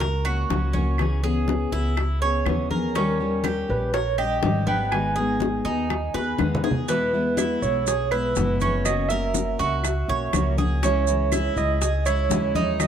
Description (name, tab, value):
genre	latin, Cuban son and guajira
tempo	122 BPM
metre	4/4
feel	straight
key	unclear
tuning	A4 = 439 Hz
part	fingerpicked steel-string acoustic guitar	accompaniment	0.0-12.9 s	B2 to G#4	-28 LUFS	left 2 dB	none
part	Cuban tres	arpeggios	0.0-12.9 s	B3 to C#5	-28 LUFS	right 3 dB	none
part	upright bass	bass	0.0-12.9 s	F#1 to E2	-26 LUFS	equal	none
part	bongos	percussion	0.0-12.9 s	none	-31 LUFS	left 9 dB	none
part	congas	percussion	0.0-12.9 s	none	-31 LUFS	left 2 dB	none
part	claves	percussion	0.3-12.9 s	none	-34 LUFS	right 8 dB	none
part	overdriven tine electric piano	melody	3.0-12.9 s	A#4 to G#5	-26 LUFS	right 4 dB	medium tremolo
part	maracas	percussion	6.9-12.9 s	none	-32 LUFS	right 8 dB	none
room	light reverb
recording	none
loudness	-21 LUFS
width	side -8 dB against mid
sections	0.0-12.9 A section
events	drum fill 6.1-6.9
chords	0.0 F#; 1.0 C#m7; 3.0 D#7; 4.9 G#m; 6.9 E; 8.9 F#; 10.8 C#m